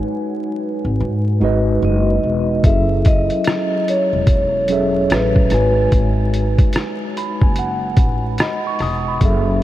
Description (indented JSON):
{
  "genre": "lo-fi hip hop",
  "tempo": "73 BPM",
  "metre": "4/4",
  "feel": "swing 62% on 16ths",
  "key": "unclear",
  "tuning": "A4 = 442 Hz",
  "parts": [
    { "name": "mellow tine electric piano", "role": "accompaniment", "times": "0.0-9.6 s", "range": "F#3 to D#6", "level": "-20 LUFS", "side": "equal", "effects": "medium stereo tremolo, cassette tape, low-pass filter" },
    { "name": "upright bass", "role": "bass", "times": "0.8-9.6 s", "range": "E1 to G#2", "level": "-20 LUFS", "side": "equal", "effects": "none" },
    { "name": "vibraphone with soft mallets", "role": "melody", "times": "1.8-6.0 s", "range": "B4 to E5", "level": "-22 LUFS", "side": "equal", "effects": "low-pass filter, ping-pong delay" },
    { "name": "lo-fi sampler-style drum kit", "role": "drums", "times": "2.6-9.4 s", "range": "hi-hat, kick drum, rim click", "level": "-17 LUFS", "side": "equal", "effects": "vintage 12-bit sampler grit" }
  ],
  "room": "moderate huge ambient reverb, RT60 8.8 s",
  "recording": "dreamy mix soaked in reverb, vinyl crackle",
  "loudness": "-14 LUFS",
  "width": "side -14 dB against mid",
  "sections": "0.0-9.6 A section",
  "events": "tine electric piano fill 6.7-9.2",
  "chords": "0.0 G#m7; 2.6 F#m9; 5.5 G#m7"
}